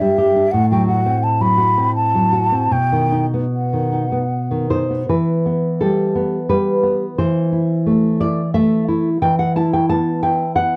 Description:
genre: romantic duo for flute and classical guitar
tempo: 73-91 BPM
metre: 3/4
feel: rubato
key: E minor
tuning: A4 = 440 Hz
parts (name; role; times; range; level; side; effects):
- mellow hollow concert flute; melody; 0.0-4.7 s; E5 to B5; -21 LUFS; equal; none
- nylon-string guitar; accompaniment; 0.0-10.8 s; G2 to A5; -18 LUFS; equal; none
room: wet booth ambience, RT60 0.3 s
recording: none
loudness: -17 LUFS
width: mono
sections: 0.0-5.1 A section; 5.1-10.8 B section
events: none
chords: 0.0 G5; 0.5 F#dim/A; 2.7 B; 5.1 Em; 7.2 Am/E; 9.2 E5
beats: | 0.52 1.23 1.95 | 2.72 3.54 4.32 | 5.09 5.81 6.50 | 7.18 7.86 8.54 | 9.21 9.89 10.55

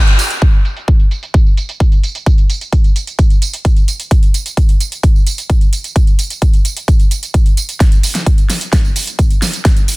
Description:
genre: EDM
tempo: 130 BPM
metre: 4/4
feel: straight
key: none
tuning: none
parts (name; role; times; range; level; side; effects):
- big-room dance drum kit; drums; 0.1-10.0 s; hi-hat, ride cymbal, snare drum, tambourine; -20 LUFS; right 2 dB; overdrive, low-pass filter on hats, low-pass filter on cymbals, low-pass filter on perc, low-pass filter on snare
- electronic kick drum; drums; 0.4-9.7 s; none; -10 LUFS; equal; none
room: little or no reverb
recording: dense, heavily limited modern master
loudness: -11 LUFS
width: side -23 dB against mid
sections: 0.4-7.8 A section; 7.8-10.0 B section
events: band accent 0.0; build-up 7.8-10.0; drum fill 7.8-10.0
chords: none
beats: | 0.42 0.88 1.34 1.80 | 2.27 2.73 3.19 3.65 | 4.11 4.57 5.03 5.50 | 5.96 6.42 6.88 7.34 | 7.80 8.27 8.73 9.19 | 9.65

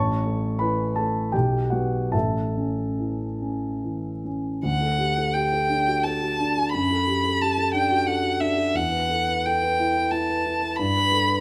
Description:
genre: classical, romantic duo for violin and grand piano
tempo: 70-94 BPM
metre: 3/4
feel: rubato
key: D major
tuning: A4 = 440 Hz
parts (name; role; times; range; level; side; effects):
- warm concert grand piano; accompaniment; 0.0-11.4 s; A1 to C#6; -26 LUFS; equal; none
- rich violin; melody; 4.7-11.4 s; E5 to B5; -25 LUFS; equal; none
room: light reverb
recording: close, detailed microphones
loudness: -24 LUFS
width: mono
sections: 0.0-4.6 A section; 4.6-11.4 B section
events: none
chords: 0.0 A; 1.3 B5; 2.1 A; 4.6 D; 6.7 D/F#; 8.8 Em; 10.8 Em/G (rootless)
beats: 0.60 1.33 | 2.13 2.98 3.83 | 4.65 5.35 6.04 | 6.73 7.41 8.07 | 8.75 9.45 10.11 | 10.77

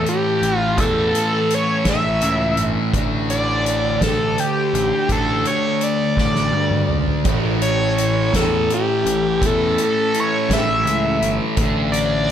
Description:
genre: psychedelic rock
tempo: 56 BPM (dotted quarters)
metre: 6/8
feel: straight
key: A major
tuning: A4 = 440 Hz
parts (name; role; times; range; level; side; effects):
- overdriven synth lead; melody; 0.0-12.3 s; G4 to E5; -20 LUFS; equal; distortion, tape echo
- fuzz guitar; riff; 0.0-12.3 s; A2 to D4; -21 LUFS; equal; distortion, phaser
- fuzz picked electric bass; bass; 0.0-12.3 s; G1 to G2; -24 LUFS; equal; overdrive
- soft-mallet drum kit; drums; 0.1-12.1 s; crash cymbal, hi-hat, kick drum, snare drum, toms; -24 LUFS; equal; none
- phased string machine; sustained chords; 7.3-12.3 s; E3 to F4; -31 LUFS; right 5 dB; none
room: moderate spring reverb, RT60 1.7 s, small room reverb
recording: none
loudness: -16 LUFS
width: side -9 dB against mid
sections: 0.0-12.3 A section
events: drum fill 6.2-7.3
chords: 0.0 A5; 2.9 D5/A; 7.3 A; 11.6 Dm/A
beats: | 0.79 1.87 | 2.94 4.02 | 5.10 6.18 | 7.26 8.34 | 9.42 10.50 | 11.58

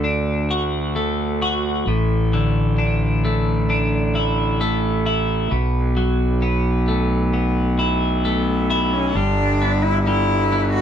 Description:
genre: post-rock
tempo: 66 BPM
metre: 4/4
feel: straight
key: unclear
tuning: A4 = 440 Hz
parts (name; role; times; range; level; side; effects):
- twelve-string electric guitar; arpeggios; 0.0-10.8 s; A2 to F#4; -21 LUFS; left 1 dB; none
- fuzz fingered electric bass; bass; 0.0-10.8 s; G1 to D2; -20 LUFS; right 1 dB; overdrive
- rich cello; melody; 8.2-10.8 s; B3 to F#4; -21 LUFS; left 2 dB; none
room: light reverb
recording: band playing live in one room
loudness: -17 LUFS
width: side -9 dB against mid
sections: 0.0-9.2 A section; 9.2-10.8 B section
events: none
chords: 0.0 D; 1.9 Asus4; 5.5 B7sus4; 9.2 G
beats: 0.05 0.96 | 1.87 2.79 3.70 4.61 | 5.52 6.43 7.34 8.25 | 9.16 10.07

